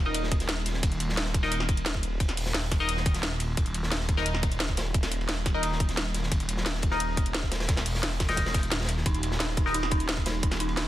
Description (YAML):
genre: dark technical drum and bass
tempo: 175 BPM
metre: 4/4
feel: straight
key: unclear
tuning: A4 = 440 Hz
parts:
  - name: phased detuned saw bass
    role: bass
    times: 0.0-10.9 s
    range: Eb1 to Fb1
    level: -30 LUFS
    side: equal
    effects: phaser, overdrive
  - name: band-passed chord stab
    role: stabs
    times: 0.1-9.7 s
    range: Eb4 to Eb5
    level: -32 LUFS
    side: left 2 dB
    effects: phaser, tape echo
  - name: crunchy breakbeat drum kit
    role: drums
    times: 0.1-10.9 s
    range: hi-hat, ride cymbal, snare drum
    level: -36 LUFS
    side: equal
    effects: high-pass filter on cymbals, high-pass filter on hats, high-pass filter on snare, high-pass filter on room
  - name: drum and bass drum kit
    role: drums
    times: 0.1-10.8 s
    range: hi-hat, snare drum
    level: -31 LUFS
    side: equal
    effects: none
  - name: electronic kick drum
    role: drums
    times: 0.3-10.5 s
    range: none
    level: -27 LUFS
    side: equal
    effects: none
  - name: dark detuned synth bell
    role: arpeggios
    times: 9.1-10.9 s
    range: Eb4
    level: -34 LUFS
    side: right 1 dB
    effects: chorus, sidechain pumping, tape echo
room: studio ambience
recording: dense, heavily limited modern master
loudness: -25 LUFS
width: side -14 dB against mid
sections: 0.0-10.9 A section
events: none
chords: 0.0 Eb5